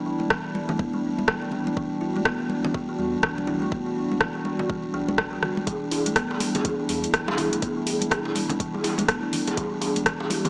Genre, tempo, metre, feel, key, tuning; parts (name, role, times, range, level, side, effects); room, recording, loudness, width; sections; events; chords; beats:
afro house; 123 BPM; 4/4; swing 60% on 16ths; E minor; A4 = 437 Hz
dark analog pad; sustained chords; 0.0-10.5 s; G3 to G4; -29 LUFS; equal; chorus, sidechain pumping
buzzing kalimba; arpeggios; 0.0-10.5 s; B2 to E4; -29 LUFS; equal; sidechain pumping, digital delay
warm sub bass; bass; 0.0-10.5 s; E1 to E2; -42 LUFS; equal; sidechain pumping
congas; percussion; 0.2-10.5 s; -32 LUFS; equal
afro-pop drum kit; drums; 0.3-10.5 s; hi-hat, rim click; -26 LUFS; equal
electronic kick drum; drums; 0.3-10.2 s; -33 LUFS; equal
djembe; percussion; 5.7-10.5 s; -29 LUFS; equal
moderate lush hall reverb, RT60 1.8 s, small room ambience; small speaker sound; -23 LUFS; side -31 dB against mid
0.0-10.5 A section
0.0 Em7
0.30 0.79 1.28 | 1.77 2.26 2.74 3.23 | 3.72 4.21 4.70 5.18 | 5.67 6.16 6.65 7.13 | 7.62 8.11 8.60 9.09 | 9.57 10.06